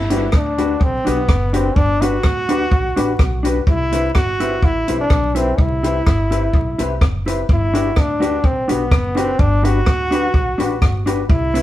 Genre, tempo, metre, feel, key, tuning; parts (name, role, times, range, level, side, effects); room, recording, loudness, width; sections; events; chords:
ska; 126 BPM; 4/4; swing 53% on 8ths; G major; A4 = 440 Hz
brilliant trombone; melody; 0.0-11.6 s; B3 to F#4; -20 LUFS; equal
upright bass; bass; 0.0-11.6 s; F#1 to D2; -22 LUFS; equal
mellow electric guitar; accompaniment; 0.1-11.6 s; C4 to B4; -22 LUFS; left 1 dB; analog delay
warm upright piano; stabs; 0.1-11.6 s; C4 to B4; -26 LUFS; left 4 dB
compact cocktail drum kit; drums; 0.1-11.6 s; hi-hat, kick drum, rim click; -17 LUFS; equal
moderate studio reverb, RT60 0.8 s; band playing live in one room, vinyl crackle; -14 LUFS; side -14 dB against mid
0.0-11.6 A section
0.0 Gmaj7; 3.7 Cmaj7; 7.5 Gmaj7